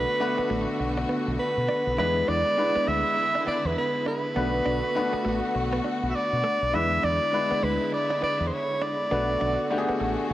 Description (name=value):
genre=R&B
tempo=101 BPM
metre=4/4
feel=swing 60% on 16ths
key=B dorian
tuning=A4 = 440 Hz
part: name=bright alto saxophone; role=melody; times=0.0-10.0 s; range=B4 to E5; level=-26 LUFS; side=right 1 dB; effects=plate reverb
part: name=clear grand piano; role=accompaniment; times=0.0-10.3 s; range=G#3 to B4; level=-30 LUFS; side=left 3 dB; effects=cassette tape, plate reverb
part: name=warm studio string section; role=sustained chords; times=0.0-10.3 s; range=D3 to F#4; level=-31 LUFS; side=equal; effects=cassette tape, plate reverb
part: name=direct-recorded clean electric guitar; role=riff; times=0.0-10.3 s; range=G#3 to E4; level=-34 LUFS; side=right 3 dB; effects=analog chorus, cassette tape
part: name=deep dub fingered electric bass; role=bass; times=0.0-10.3 s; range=A1 to B2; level=-30 LUFS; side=equal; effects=none
room=moderate studio reverb, RT60 0.6 s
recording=home recording on cassette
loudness=-23 LUFS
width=side -14 dB against mid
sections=0.0-10.3 A section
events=none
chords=0.0 Bm7; 2.0 E7; 4.4 Bm7; 6.7 E7; 9.1 Bm7